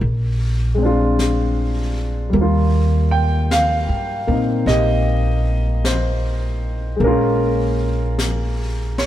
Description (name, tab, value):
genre	jazz ballad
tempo	51 BPM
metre	4/4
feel	swing 66% on 8ths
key	Eb major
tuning	A4 = 440 Hz
part	warm grand piano	accompaniment	0.0-9.1 s	G3 to G5	-20 LUFS	equal	none
part	upright bass	bass	0.0-9.1 s	Bb1 to Bb2	-19 LUFS	equal	none
part	jazz brush drum kit	drums	0.0-9.1 s	brushed snare drum, hi-hat, snare drum	-29 LUFS	left 2 dB	none
room	light reverb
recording	heard from further back in the room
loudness	-16 LUFS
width	side -12 dB against mid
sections	0.0-9.1 A section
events	none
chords	0.0 Bb9; 2.3 Ebadd9; 7.0 Bbm7